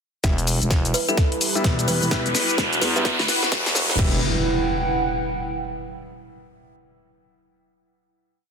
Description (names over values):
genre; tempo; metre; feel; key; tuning
bass house; 128 BPM; 4/4; swing 62% on 16ths; E minor; A4 = 440 Hz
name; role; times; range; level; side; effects
sweeping resonant pad; sustained chords; 0.2-4.2 s; G3 to B4; -30 LUFS; equal; chorus, sidechain pumping
clear grand piano; stabs; 0.2-4.2 s; G3 to E4; -30 LUFS; left 3 dB; sidechain pumping, low-pass filter, dub echo
growling FM bass; bass; 0.2-4.2 s; E1 to E2; -25 LUFS; equal; overdrive, sidechain pumping
big-room dance drum kit; drums; 0.2-4.1 s; crash cymbal, hi-hat, shaker, snare drum; -24 LUFS; left 2 dB; high-pass filter on snare, studio reverb, high-pass filter on hats, high-pass filter on perc, high-pass filter on cymbals
electronic kick drum; drums; 0.2-4.1 s; none; -22 LUFS; equal; studio reverb
riser and impact; sound effects; 1.0-5.9 s; none; -26 LUFS; equal; none
warbly tape-like pad; texture; 0.6-5.8 s; E4 to G5; -28 LUFS; right 3 dB; chorus, built-in reverb, sidechain pumping
kalimba; melody; 0.9-3.0 s; A4 to B4; -29 LUFS; right 1 dB; dub echo
pulsing pluck wobble bass; bass; 1.6-3.3 s; E1 to D2; -25 LUFS; equal; chorus, tube saturation, sidechain pumping
room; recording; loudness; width
moderate digital room reverb, RT60 1.1 s; dense, heavily limited modern master, high-pass filter; -19 LUFS; side -6 dB against mid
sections
0.2-4.0 build; 4.0-5.9 final chord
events
build-up 0.2-4.0; drum fill 0.2-4.0; filter sweep 0.2-4.0; riser 1.0-4.0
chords
0.2 Em